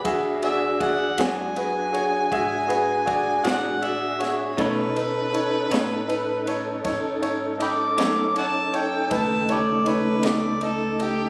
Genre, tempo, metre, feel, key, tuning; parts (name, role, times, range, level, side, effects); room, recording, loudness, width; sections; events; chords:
slow blues; 53 BPM (dotted quarters); 12/8; straight; A4 = 440 Hz
warm harmonica; second line; 0.0-11.3 s; G4 to D6; -28 LUFS; equal; overdrive, tape echo
clear upright piano; accompaniment; 0.0-11.3 s; D#4 to E5; -29 LUFS; equal
upright bass; bass; 0.0-11.3 s; C#2 to B2; -42 LUFS; equal
tonewheel organ; sustained chords; 0.1-11.3 s; C#3 to A4; -30 LUFS; equal; chorus vibrato, slow rotary speaker
compact cocktail drum kit; drums; 0.1-11.2 s; kick drum, ride cymbal, snare drum; -36 LUFS; equal
electric guitar through a small old amp; accompaniment; 1.2-10.5 s; B2 to F#4; -30 LUFS; equal; tremolo
moderate club ambience, RT60 0.5 s; recorded on a phone in the room, studio reverb, compression; -24 LUFS; mono
0.0-11.3 A section
harmonica solo 0.0-11.3
0.0 E9; 4.6 B9